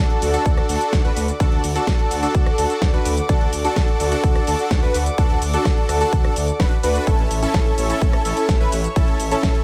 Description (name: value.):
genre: EDM, festival progressive house.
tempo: 127 BPM.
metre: 4/4.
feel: straight.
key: D major.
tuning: A4 = 440 Hz.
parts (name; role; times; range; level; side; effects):
rich studio string section; sustained chords; 0.0-9.6 s; A4 to D6; -31 LUFS; equal; sidechain pumping.
unison lead; arpeggios; 0.0-9.6 s; A4 to B4; -28 LUFS; equal; analog chorus, sidechain pumping, tape echo.
supersaw chords; riff; 0.0-9.6 s; C#4 to B4; -26 LUFS; equal; sidechain pumping, tape echo.
detuned saw bass; bass; 0.0-9.5 s; D1 to D2; -27 LUFS; equal; chorus, sidechain pumping.
big-room dance drum kit; drums; 0.1-9.6 s; cabasa, hi-hat, rim click, snare drum; -30 LUFS; equal; none.
electronic kick drum; drums; 0.5-9.5 s; none; -20 LUFS; equal; none.
room: light reverb, digital ambience.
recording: none.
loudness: -19 LUFS.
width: mono.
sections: 0.0-9.6 A section.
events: none.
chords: 0.0 D; 7.1 A.